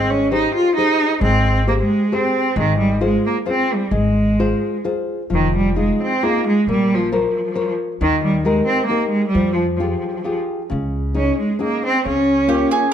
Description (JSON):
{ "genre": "italian folk, Italian serenade", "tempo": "133 BPM", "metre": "3/4", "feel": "rubato", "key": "Ab major, F minor from 5.3 s", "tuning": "A4 = 440 Hz", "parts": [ { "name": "rich cello", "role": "melody", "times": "0.0-12.9 s", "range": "Eb3 to F4", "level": "-18 LUFS", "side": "right 1 dB", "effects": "none" }, { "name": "nylon-string guitar", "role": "accompaniment", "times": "0.0-12.8 s", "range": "Db3 to Db5", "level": "-22 LUFS", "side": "left 3 dB", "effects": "none" }, { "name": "upright bass", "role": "bass", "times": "0.0-12.6 s", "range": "F1 to F2", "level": "-22 LUFS", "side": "equal", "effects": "none" }, { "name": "mandolin", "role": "second line", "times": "12.5-12.9 s", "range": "G4 to Ab4", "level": "-18 LUFS", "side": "right 4 dB", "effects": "none" } ], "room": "moderate recital hall reverb, RT60 1.4 s", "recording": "dark, warm production", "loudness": "-16 LUFS", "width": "side -9 dB against mid", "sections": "0.0-5.3 A section; 5.3-12.9 B section", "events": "none", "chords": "0.0 Abmaj7; 2.6 Ab6; 5.3 Fm7; 6.7 Bbmadd9; 8.0 Eb; 9.3 Fmadd9; 10.7 Dbsus2; 12.0 Bbm/Db", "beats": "0.30 0.77 | 1.22 1.67 2.12 | 2.56 3.01 3.46 | 3.92 4.38 4.84 | 5.30 5.76 6.21 | 6.67 7.11 7.56 | 8.00 8.45 8.90 | 9.35 9.80 10.25 | 10.70 11.16 11.61 | 12.05 12.49" }